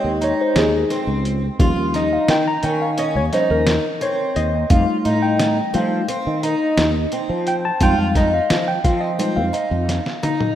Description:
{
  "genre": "progressive instrumental, band music in an uneven meter",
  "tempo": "174 BPM (eighths)",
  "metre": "9/8",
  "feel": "straight",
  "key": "F minor",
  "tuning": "A4 = 440 Hz",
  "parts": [
    { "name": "mellow tine electric piano", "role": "accompaniment", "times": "0.0-10.4 s", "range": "F3 to Bb5", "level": "-21 LUFS", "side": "equal", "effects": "overdrive, medium stereo tremolo" },
    { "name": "fingerpicked twelve-string acoustic guitar", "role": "arpeggios", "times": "0.0-10.6 s", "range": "C4 to F4", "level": "-22 LUFS", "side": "left 1 dB", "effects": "none" },
    { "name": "sustaining fretless electric bass", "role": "bass", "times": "0.0-10.0 s", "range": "Db2 to F3", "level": "-22 LUFS", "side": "equal", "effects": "ensemble chorus" },
    { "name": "lo-fi sampler-style drum kit", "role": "drums", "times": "0.2-10.6 s", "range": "hi-hat, kick drum, snare drum, toms", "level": "-21 LUFS", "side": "equal", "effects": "overdrive" }
  ],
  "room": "wet lush hall reverb, RT60 2.0 s",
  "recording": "rough home demo mix",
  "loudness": "-16 LUFS",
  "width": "side -11 dB against mid",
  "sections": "0.0-10.6 A section",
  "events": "tine electric piano solo 0.0-10.6; drum fill 9.9-10.6",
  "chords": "0.0 Fm9 (rootless); 1.6 Eb7; 4.7 F7; 7.8 Fm7",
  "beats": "0.21 0.56 0.90 1.25 | 1.59 1.94 2.29 2.63 2.98 3.32 3.67 4.01 4.36 | 4.70 5.05 5.39 5.74 6.08 6.43 6.77 7.12 7.46 | 7.81 8.15 8.50 8.84 9.19 9.53 9.88 10.22"
}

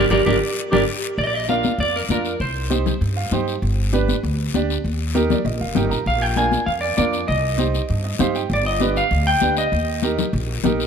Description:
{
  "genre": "latin, cumbia",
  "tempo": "197 BPM",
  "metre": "4/4",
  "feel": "straight",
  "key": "C minor",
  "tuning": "A4 = 441 Hz",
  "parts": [
    { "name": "clean electric guitar", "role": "melody", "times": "0.0-3.3, 6.1-10.6 s", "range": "G4 to Ab5", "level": "-21 LUFS", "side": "right 1 dB", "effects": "spring reverb, slapback echo" },
    { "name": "warm upright piano", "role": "accompaniment", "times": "0.0-10.9 s", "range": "D4 to Bb5", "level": "-24 LUFS", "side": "right 6 dB", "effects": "none" },
    { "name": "upright bass", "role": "bass", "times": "0.0-10.9 s", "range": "F1 to G2", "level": "-23 LUFS", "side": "equal", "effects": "none" },
    { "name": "breathy clarinet", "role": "second line", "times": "0.1-0.8 s", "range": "G4", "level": "-29 LUFS", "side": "left 4 dB", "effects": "none" },
    { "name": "congas", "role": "percussion", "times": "0.1-10.8 s", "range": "none", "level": "-25 LUFS", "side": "left 8 dB", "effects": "none" },
    { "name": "guiro", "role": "percussion", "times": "0.1-10.9 s", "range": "none", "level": "-32 LUFS", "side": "left 8 dB", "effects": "none" }
  ],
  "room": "moderate plate reverb, RT60 2.7 s",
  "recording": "none",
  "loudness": "-18 LUFS",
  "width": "side -7 dB against mid",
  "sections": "0.0-1.2 A section; 1.2-10.9 B section",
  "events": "band accent 0.0-1.2; drum fill 0.3-1.2; upright piano fill 3.0-3.6, 5.1-6.1, 7.9-8.5",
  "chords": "0.0 Gm; 1.2 Bb; 2.4 Cm; 3.6 G; 4.8 Eb; 6.1 Bb; 7.3 Cm; 8.5 G; 9.7 Eb",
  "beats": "0.26 0.56 0.87 | 1.18 1.48 1.79 2.09 | 2.40 2.70 3.01 3.31 | 3.62 3.93 4.23 4.54 | 4.84 5.15 5.45 5.76 | 6.06 6.37 6.67 6.98 | 7.28 7.59 7.89 8.20 | 8.50 8.81 9.11 9.42 | 9.72 10.03 10.34 10.64"
}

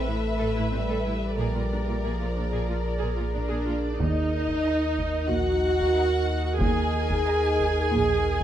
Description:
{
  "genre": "cinematic, suspense film score",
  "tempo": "92 BPM",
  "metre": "4/4",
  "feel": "straight",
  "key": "Eb minor from 4.0 s",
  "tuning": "A4 = 440 Hz",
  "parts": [
    { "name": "warm symphonic violin section", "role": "melody", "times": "0.0-8.4 s", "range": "D5 to Ab5", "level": "-33 LUFS", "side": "left 3 dB", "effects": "none" },
    { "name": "clear symphonic violin section", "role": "second line", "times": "0.0-7.8 s", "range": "Bb4 to Bb5", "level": "-37 LUFS", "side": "left 2 dB", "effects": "none" },
    { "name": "rich chamber viola section", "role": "accompaniment", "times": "0.0-8.4 s", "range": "C4 to A4", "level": "-28 LUFS", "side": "right 2 dB", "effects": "none" },
    { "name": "mellow French horn section", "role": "sustained chords", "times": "0.0-8.4 s", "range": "F3 to Ab4", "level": "-31 LUFS", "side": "left 1 dB", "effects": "none" },
    { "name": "warbly tape-like pad", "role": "sustained chords", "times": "0.0-8.4 s", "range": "Eb4 to E5", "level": "-33 LUFS", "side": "right 1 dB", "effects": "chorus, built-in reverb" },
    { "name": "warm sub bass", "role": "drone", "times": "0.0-8.4 s", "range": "A1 to Eb2", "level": "-29 LUFS", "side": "equal", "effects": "none" },
    { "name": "rich symphonic cello section", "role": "bass", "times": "0.1-8.4 s", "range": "Eb2 to Bb2", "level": "-34 LUFS", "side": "right 3 dB", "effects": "none" },
    { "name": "rich symphonic double bass section", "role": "bass", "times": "1.4-8.4 s", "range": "Bb1 to Eb2", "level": "-32 LUFS", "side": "right 3 dB", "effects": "none" },
    { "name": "taiko ensemble", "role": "drums", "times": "4.0-8.4 s", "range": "none", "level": "-32 LUFS", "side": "equal", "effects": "none" }
  ],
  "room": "moderate scoring stage reverb, RT60 2.1 s",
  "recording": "none",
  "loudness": "-23 LUFS",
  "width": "side -10 dB against mid",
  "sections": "0.0-4.0 A section; 4.0-8.4 B section",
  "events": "none",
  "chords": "0.0 Asus2; 1.4 Bb7; 4.0 Ebm",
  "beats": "0.09 0.74 | 1.40 2.05 2.70 3.35 | 4.01 4.66 5.31 5.96 | 6.62 7.27 7.92"
}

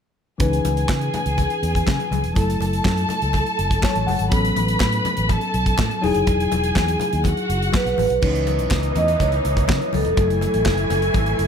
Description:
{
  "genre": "disco",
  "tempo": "123 BPM",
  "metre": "4/4",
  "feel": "straight",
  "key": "C# minor",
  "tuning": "A4 = 440 Hz",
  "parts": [
    { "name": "dark studio violin section", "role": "second line", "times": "0.4-8.2 s", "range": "F#4 to B5", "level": "-24 LUFS", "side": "left 1 dB", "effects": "none" },
    { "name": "tine electric piano", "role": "accompaniment", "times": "0.4-11.5 s", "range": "E3 to F#5", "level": "-25 LUFS", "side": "left 3 dB", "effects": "none" },
    { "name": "fingered electric bass", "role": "bass", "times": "0.4-11.5 s", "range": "E1 to C#3", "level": "-23 LUFS", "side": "equal", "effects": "none" },
    { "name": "modern studio drum kit", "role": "drums", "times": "0.4-11.5 s", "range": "crash cymbal, handclaps, hi-hat, kick drum, snare drum", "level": "-24 LUFS", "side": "right 1 dB", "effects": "none" },
    { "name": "congas", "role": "percussion", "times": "0.7-11.3 s", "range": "none", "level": "-30 LUFS", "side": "left 9 dB", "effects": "none" },
    { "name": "vibraphone with soft mallets", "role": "melody", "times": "7.8-11.5 s", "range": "A4 to D#5", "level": "-22 LUFS", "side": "right 2 dB", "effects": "tape echo" },
    { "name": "rich studio string section", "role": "sustained chords", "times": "8.2-11.5 s", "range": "E3 to G#5", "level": "-27 LUFS", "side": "equal", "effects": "none" }
  ],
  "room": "light reverb",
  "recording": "none",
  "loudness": "-18 LUFS",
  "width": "side -7 dB against mid",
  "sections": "0.4-8.2 A section; 8.2-11.5 B section",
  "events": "tine electric piano fill 3.6-4.3",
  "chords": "0.4 C#m9; 2.4 F#m7; 4.3 A69; 6.0 Emaj9; 8.2 C#m9; 10.2 F#m9",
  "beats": "| 0.40 0.89 1.38 1.87 | 2.36 2.85 3.34 3.83 | 4.32 4.80 5.29 5.78 | 6.27 6.76 7.25 7.73 | 8.22 8.71 9.20 9.68 | 10.17 10.66 11.15"
}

